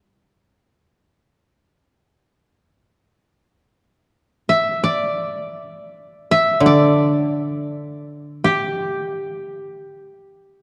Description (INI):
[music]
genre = japanese traditional, Japanese chamber music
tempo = free time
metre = none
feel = none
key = unclear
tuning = A4 = 441 Hz
[part]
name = koto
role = melody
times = 0.0-10.6 s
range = G4 to E5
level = -22 LUFS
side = equal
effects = none
[part]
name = koto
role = accompaniment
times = 6.6-10.0 s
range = D3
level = -20 LUFS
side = equal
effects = none
[sound]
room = wet concert hall reverb, RT60 2.5 s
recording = dark, warm production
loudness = -19 LUFS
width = mono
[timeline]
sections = 0.0-2.8 A section; 2.8-10.6 A section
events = none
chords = none